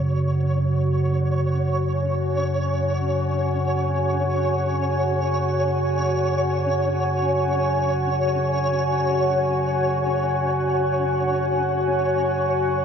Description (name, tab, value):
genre	dark ambient drone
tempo	free time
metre	none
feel	none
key	unclear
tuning	A4 = 442 Hz
part	deep dark ambient pad	sustained chords	0.0-12.8 s	F#4 to G#5	-23 LUFS	left 1 dB	chorus, built-in reverb
part	deep rumbling drone	drone	0.0-12.8 s	F#2 to C#3	-24 LUFS	right 1 dB	built-in reverb, wide subtle chorus
part	flickering grainy texture	texture	0.0-12.8 s	C#5	-27 LUFS	equal	built-in reverb
room	wet cathedral reverb, RT60 6.0 s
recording	dark, warm production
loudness	-20 LUFS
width	side -7 dB against mid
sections	0.0-12.8 A section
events	filter sweep on synth drone 0.0-12.8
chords	0.0 F#sus2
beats	free time